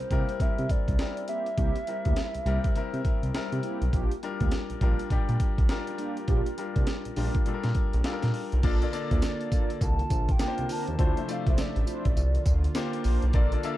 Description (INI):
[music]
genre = R&B, new jack swing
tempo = 102 BPM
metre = 4/4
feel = swing 62% on 16ths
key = unclear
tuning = A4 = 441 Hz
[part]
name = hollow clarinet-like synth lead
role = melody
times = 0.0-3.6, 9.2-13.1 s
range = C5 to A5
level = -35 LUFS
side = right 1 dB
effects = chorus
[part]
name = warm grand piano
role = accompaniment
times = 0.0-13.8 s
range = G3 to F5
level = -34 LUFS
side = left 5 dB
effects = none
[part]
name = smooth synth bass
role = bass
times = 0.0-13.6 s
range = A1 to C3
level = -28 LUFS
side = equal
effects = none
[part]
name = mellow synth brass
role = stabs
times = 0.1-13.5 s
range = Bb3 to D5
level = -37 LUFS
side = right 3 dB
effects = chorus
[part]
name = breakbeat sampler-style drum kit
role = drums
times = 0.1-13.8 s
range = crash cymbal, hi-hat, kick drum, snare drum, tambourine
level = -27 LUFS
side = equal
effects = none
[part]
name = warm analog pad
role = sustained chords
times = 8.6-13.8 s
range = C3 to E5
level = -37 LUFS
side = right 3 dB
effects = chorus
[sound]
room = digital ambience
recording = dark, warm production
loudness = -25 LUFS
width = side -15 dB against mid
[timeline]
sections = 0.0-8.6 A section; 8.6-13.8 B section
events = grand piano fill 7.8-8.6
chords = 0.0 C7; 3.9 Gm7/Bb; 8.6 Bbmaj7; 9.8 C9sus4; 11.0 Dm9; 12.2 C9sus4